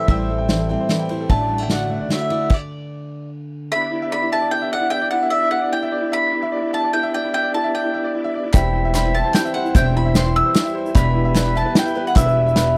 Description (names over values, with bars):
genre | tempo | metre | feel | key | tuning
indie folk with a building arrangement | 149 BPM | 3/4 | straight | E minor | A4 = 440 Hz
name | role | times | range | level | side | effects
mandolin | melody | 0.0-12.8 s | D5 to E6 | -24 LUFS | equal | none
fingerpicked steel-string acoustic guitar | accompaniment | 0.0-3.7 s | A2 to F#4 | -30 LUFS | equal | none
picked acoustic archtop guitar | accompaniment | 0.0-2.5, 8.5-12.8 s | E2 to E4 | -30 LUFS | equal | none
clear upright piano | arpeggios | 0.0-12.8 s | E4 to G5 | -27 LUFS | equal | none
upright bass | bass | 0.1-2.0, 8.5-12.8 s | E1 to A1 | -23 LUFS | equal | none
unplugged drum kit | drums | 0.1-2.6, 8.5-12.7 s | crash cymbal, hi-hat, kick drum, ride cymbal, snare drum | -19 LUFS | equal | none
bright tonewheel organ | sustained chords | 3.7-12.8 s | B3 to D5 | -32 LUFS | equal | slow rotary speaker, chorus vibrato
glockenspiel with rubber mallets | second line | 8.5-12.8 s | G5 to B5 | -31 LUFS | equal | none
felt-muted upright piano | accompaniment | 8.5-12.8 s | E2 to G5 | -33 LUFS | equal | none
egg shaker | percussion | 8.5-12.7 s | none | -40 LUFS | equal | none
group handclap | percussion | 8.5-12.7 s | none | -35 LUFS | equal | none
room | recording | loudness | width
little or no reverb | dry, close 1970s-style studio recording | -19 LUFS | mono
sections
0.0-3.7 A section; 3.7-12.8 B section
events
stop 2.5-3.7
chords
0.0 Am7; 1.3 Dadd9/A; 2.5 N.C.; 3.7 Em7; 8.5 C/E; 11.0 Em